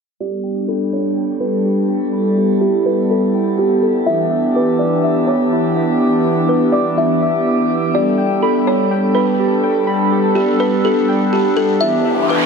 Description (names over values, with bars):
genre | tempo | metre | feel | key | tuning
hip hop | 124 BPM | 4/4 | half-time | G major | A4 = 440 Hz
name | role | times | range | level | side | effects
buzzing kalimba | melody | 0.2-12.5 s | G4 to E5 | -19 LUFS | equal | low-pass filter, ping-pong delay
hollow soft pad | sustained chords | 0.2-12.5 s | E3 to A4 | -16 LUFS | equal | chorus, low-pass filter
muted felt-like synth keys | arpeggios | 0.2-12.5 s | E4 to D6 | -22 LUFS | right 3 dB | chorus, low-pass filter, ping-pong delay
noise sweep | sound effects | 12.0-12.5 s | none | -19 LUFS | left 2 dB | none
room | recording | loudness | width
moderate shimmer reverb, RT60 7.0 s | dark, warm production | -13 LUFS | side -5 dB against mid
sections
0.2-12.5 A section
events
filter sweep 0.2-12.5; noise sweep 12.0-12.5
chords
0.2 Gadd9; 4.1 Em7; 7.9 Gadd9; 11.8 Em7